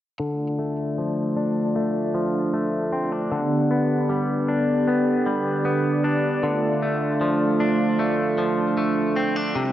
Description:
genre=dream pop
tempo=77 BPM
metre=4/4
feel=straight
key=D dorian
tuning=A4 = 441 Hz
part: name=warm analog pad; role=sustained chords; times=0.2-9.7 s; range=D3 to D5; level=-22 LUFS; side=right 1 dB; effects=chorus, low-pass filter
part: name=direct-recorded clean electric guitar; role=arpeggios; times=0.2-9.7 s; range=C3 to D4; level=-24 LUFS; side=left 2 dB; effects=wide subtle chorus, low-pass filter, digital delay
room=moderate plate reverb, RT60 3.1 s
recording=worn, warbling old tape, cassette tape, warbly pitch drift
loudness=-20 LUFS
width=side -12 dB against mid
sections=0.2-9.7 A section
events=filter sweep 0.2-9.7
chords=0.2 Dm; 3.3 G/D; 6.4 Dm

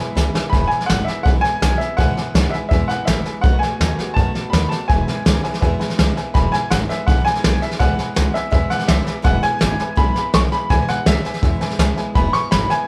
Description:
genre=rockabilly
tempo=165 BPM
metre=4/4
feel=straight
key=E major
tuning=A4 = 440 Hz
part: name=clear upright piano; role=melody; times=0.0-12.9 s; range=E5 to C#6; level=-24 LUFS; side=equal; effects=none
part: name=dark upright piano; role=accompaniment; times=0.0-12.8 s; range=B4 to A5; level=-31 LUFS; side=equal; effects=none
part: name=picked steel-string acoustic guitar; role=accompaniment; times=0.0-12.9 s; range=E2 to F#4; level=-30 LUFS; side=equal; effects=none
part: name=upright bass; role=bass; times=0.2-12.7 s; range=E1 to F#2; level=-24 LUFS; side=equal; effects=none
part: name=vintage brush drum kit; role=drums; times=0.2-12.7 s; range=hi-hat, kick drum, snare drum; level=-21 LUFS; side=equal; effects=none
room=moderate large studio reverb, RT60 0.9 s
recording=band playing live in one room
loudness=-18 LUFS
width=mono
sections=0.0-6.3 A section; 6.3-12.9 A section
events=drum fill 0.2-0.5; upright piano fill 5.6-6.3, 11.6-12.2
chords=0.0 E; 3.4 B7; 4.9 E

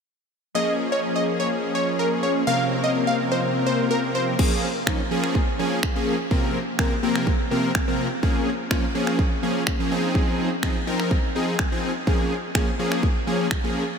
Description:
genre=dance-pop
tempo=125 BPM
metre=4/4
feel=straight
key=Bb minor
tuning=A4 = 440 Hz
part: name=big bright polysynth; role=accompaniment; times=0.5-13.8 s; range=C3 to Bb4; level=-23 LUFS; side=left 1 dB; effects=chorus, sidechain pumping
part: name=plucky unison lead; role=melody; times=0.6-4.2 s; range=Bb4 to F5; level=-26 LUFS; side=equal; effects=sidechain pumping, tape echo
part: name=pop drum kit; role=drums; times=4.4-13.6 s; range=crash cymbal, finger snaps, kick drum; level=-24 LUFS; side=equal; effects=none
room=wet huge ambient reverb, RT60 8.9 s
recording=dreamy mix soaked in reverb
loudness=-20 LUFS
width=side -6 dB against mid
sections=0.6-4.4 A section; 4.4-14.0 B section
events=none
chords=0.6 Bbm7; 2.5 Fsus4/C; 4.4 Bbm7; 6.3 Fsus4/C; 8.2 Bbm7; 9.9 Fm7; 12.1 Bbm7

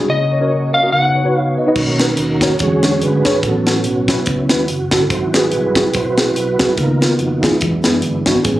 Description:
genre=uptempo gospel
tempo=143 BPM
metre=4/4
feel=swing 57% on 8ths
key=unclear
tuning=A4 = 440 Hz
part: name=mellow tine electric piano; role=accompaniment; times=0.0-8.6 s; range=G#2 to D#5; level=-17 LUFS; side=left 1 dB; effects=ensemble chorus
part: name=mellow tonewheel organ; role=sustained chords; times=0.0-8.6 s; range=C#3 to C#5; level=-18 LUFS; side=right 2 dB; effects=slow rotary speaker, chorus vibrato
part: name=warm French horn section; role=sustained chords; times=0.0-1.8 s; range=C#3 to F#4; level=-31 LUFS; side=equal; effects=none
part: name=fingered electric bass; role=bass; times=0.0-8.6 s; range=F#1 to F#2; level=-23 LUFS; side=equal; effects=none
part: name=electric slide guitar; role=melody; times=0.1-1.5 s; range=D#5 to F#5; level=-16 LUFS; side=left 2 dB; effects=none
part: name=tight funk drum kit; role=drums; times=1.8-8.6 s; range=crash cymbal, hi-hat, kick drum, snare drum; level=-19 LUFS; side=equal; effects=none
room=light reverb, studio reverb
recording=recorded on a phone in the room, club reverb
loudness=-13 LUFS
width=side -15 dB against mid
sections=0.0-1.8 A section; 1.8-8.6 B section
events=break 0.1-1.8; tonewheel organ solo 1.8-8.6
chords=0.1 F#/C#; 0.9 C#9sus4; 1.8 Bmaj7; 2.6 E13; 3.4 A6; 5.1 G#7alt; 6.8 C#13; 7.6 E7

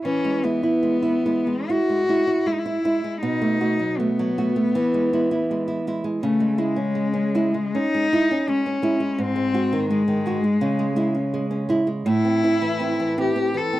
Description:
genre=romantic duo for cello and classical guitar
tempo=68-85 BPM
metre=4/4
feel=rubato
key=E major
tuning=A4 = 440 Hz
part: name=rich cello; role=melody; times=0.0-13.8 s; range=G#3 to A4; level=-23 LUFS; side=left 3 dB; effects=none
part: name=nylon-string guitar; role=accompaniment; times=0.0-13.8 s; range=G#2 to F#4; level=-22 LUFS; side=right 2 dB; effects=none
room=studio reverb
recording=dry, close 1970s-style studio recording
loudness=-19 LUFS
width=side -15 dB against mid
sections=0.0-13.8 A section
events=none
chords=0.0 E; 3.2 B7; 4.7 E; 6.2 C#m; 9.2 G#7; 10.6 C#m; 12.1 Am

